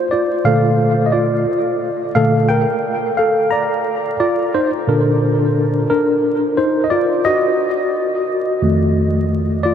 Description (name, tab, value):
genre	hip hop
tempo	88 BPM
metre	4/4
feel	swing 59% on 16ths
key	Bb major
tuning	A4 = 440 Hz
part	tine electric piano	solo	0.0-9.7 s	F2 to Bb5	-14 LUFS	equal	overdrive, fast stereo tremolo, diffuse ambient delay
room	wet huge ambient reverb, RT60 8.1 s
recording	dreamy mix soaked in reverb, vinyl crackle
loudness	-14 LUFS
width	side -8 dB against mid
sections	0.0-4.9 A section; 4.9-9.7 B section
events	tine electric piano solo 0.0-4.9, 4.9-9.7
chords	0.0 Bbmaj7; 7.6 F7b9